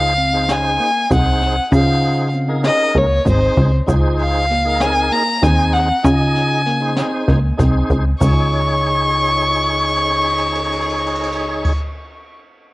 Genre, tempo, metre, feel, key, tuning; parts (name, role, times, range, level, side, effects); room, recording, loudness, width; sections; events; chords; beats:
progressive instrumental, band music in an uneven meter; 194 BPM (eighths); 7/8; straight; Db major; A4 = 441 Hz
rich violin; melody; 0.0-11.7 s; C5 to Db6; -18 LUFS; left 1 dB; cassette tape, analog delay
tonewheel organ; accompaniment; 0.0-11.7 s; Eb4 to Eb5; -24 LUFS; equal; chorus vibrato, fast rotary speaker, cassette tape
tine electric piano; arpeggios; 0.0-11.8 s; Bb3 to Db5; -26 LUFS; right 2 dB; lush chorus, cassette tape
plucky analog bass; bass; 0.0-11.7 s; Ab1 to Db3; -17 LUFS; equal
jazz brush drum kit; drums; 0.2-11.8 s; crash cymbal, hi-hat, kick drum, ride cymbal, snare drum; -23 LUFS; equal; cassette tape
egg shaker; percussion; 0.5-11.7 s; -40 LUFS; right 3 dB
light reverb, studio reverb; home recording on cassette; -14 LUFS; side -19 dB against mid
0.0-8.2 A section; 8.2-12.5 B section
drum fill 8.5-11.6
0.0 Dbmaj7; 3.9 Fm/Db; 8.2 Db
0.18 0.49 0.80 1.11 1.41 | 1.72 2.03 2.34 2.65 2.96 3.27 3.58 | 3.88 4.19 4.50 4.81 5.12 5.43 5.74 | 6.05 6.36 6.66 6.97 7.28 7.59 7.90 | 8.21 8.52 8.83 9.14 9.45 9.75 10.06 | 10.37 10.68 10.99 11.30 11.61